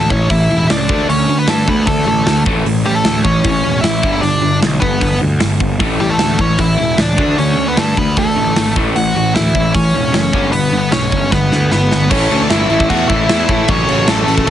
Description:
punk rock; 152 BPM; 4/4; straight; A mixolydian; A4 = 440 Hz
nasal lead guitar with a parked wah; melody; 0.0-14.5 s; G3 to F#5; -16 LUFS; equal; overdrive
crunchy overdriven guitar; riff; 0.0-14.5 s; F#2 to D4; -16 LUFS; equal
fuzz picked electric bass; bass; 0.0-14.4 s; E1 to A2; -18 LUFS; equal; overdrive
big rock drum kit; drums; 0.1-14.5 s; crash cymbal, hi-hat, kick drum, snare drum; -18 LUFS; equal
little or no reverb; heavily compressed radio sound, nothing above 10.9 kHz; -11 LUFS; side -11 dB against mid
0.0-12.1 A section; 12.1-14.5 B section
drum fill 11.3-12.1
0.0 A; 0.9 D5; 2.5 A; 4.0 G; 5.8 A; 7.2 D5; 8.8 A; 10.3 G; 12.1 A; 13.7 F#m/A
0.29 0.69 | 1.08 1.47 1.87 2.26 | 2.65 3.05 3.44 3.84 | 4.23 4.62 5.02 5.41 | 5.80 6.20 6.59 6.99 | 7.38 7.77 8.17 8.56 | 8.96 9.35 9.74 10.14 | 10.53 10.93 11.32 11.71 | 12.11 12.50 12.89 13.29 | 13.68 14.07 14.47

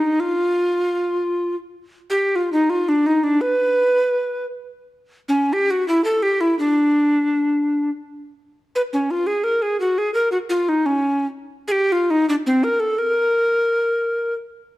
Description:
mexican folk; 113 BPM; 3/4; swing 53% on 8ths; A4 = 440 Hz
breathy tenor recorder; solo; 0.0-14.3 s; C4 to Cb5; -17 LUFS; equal
moderate recital hall reverb, RT60 1.5 s; dark, warm production; -17 LUFS; side -17 dB against mid
0.0-14.6 A section
| 0.19 0.72 1.26 | 1.80 2.33 2.87 | 3.40 3.92 4.45 | 4.98 5.51 6.04 | 6.58 7.11 7.65 | 8.18 8.72 9.26 | 9.79 10.32 10.85 | 11.38 11.91 12.45 | 12.98 13.51 14.05

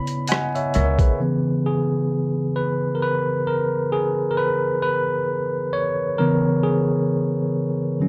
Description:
lo-fi hip hop; 66 BPM; 4/4; swing 56% on 16ths; C# dorian; A4 = 443 Hz
bell-like tine electric piano; accompaniment; 0.0-8.1 s; C#3 to B5; -22 LUFS; equal; cassette tape, low-pass filter
boom bap sampler-style drum kit; drums; 0.1-1.2 s; hi-hat, kick drum, rim click; -23 LUFS; equal; overdrive
upright bass; bass; 0.8-1.0 s; C#2; -23 LUFS; equal
light reverb; dry, gritty hardware recording, cassette tape; -22 LUFS; mono
0.0-1.2 A section; 1.2-8.1 B section
tine electric piano fill 0.0-1.2; tine electric piano solo 1.2-8.1
0.0 C#m7
0.29 | 1.20 2.11 3.02 3.93 | 4.83 5.74 6.65 7.56

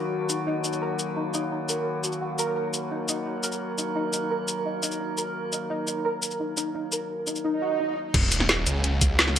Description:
dark technical drum and bass; 172 BPM; 4/4; straight; Eb minor; A4 = 440 Hz
metallic inharmonic drone; sustained chords; 0.0-9.4 s; Eb3 to Bb4; -31 LUFS; left 1 dB; chorus, built-in reverb, vintage 12-bit sampler grit, sidechain pumping
soft round pluck; arpeggios; 0.3-7.8 s; Eb4 to Bb4; -30 LUFS; equal; ensemble chorus, sidechain pumping, digital delay
drum and bass drum kit; drums; 0.3-9.4 s; cabasa, crash cymbal, hi-hat, snare drum; -24 LUFS; left 1 dB
swell and sub drop; sound effects; 7.5-9.4 s; -30 LUFS; right 4 dB
snarling distorted saw bass; bass; 8.1-9.4 s; Eb1 to Db2; -25 LUFS; equal; distortion, overdrive
electronic kick drum; drums; 8.1-9.1 s; -23 LUFS; equal; overdrive
moderate digital room reverb, RT60 1.2 s, digital ambience; -24 LUFS; side -9 dB against mid
0.0-8.1 A section; 8.1-9.4 B section
swell 7.5-8.1; drop 8.1-9.4; impact 8.1-9.4
0.0 Ebm
0.12 0.47 0.82 | 1.17 1.51 1.86 2.21 | 2.56 2.91 3.26 3.61 | 3.96 4.30 4.65 5.00 | 5.35 5.70 6.05 6.40 | 6.75 7.09 7.44 7.79 | 8.14 8.49 8.84 9.19

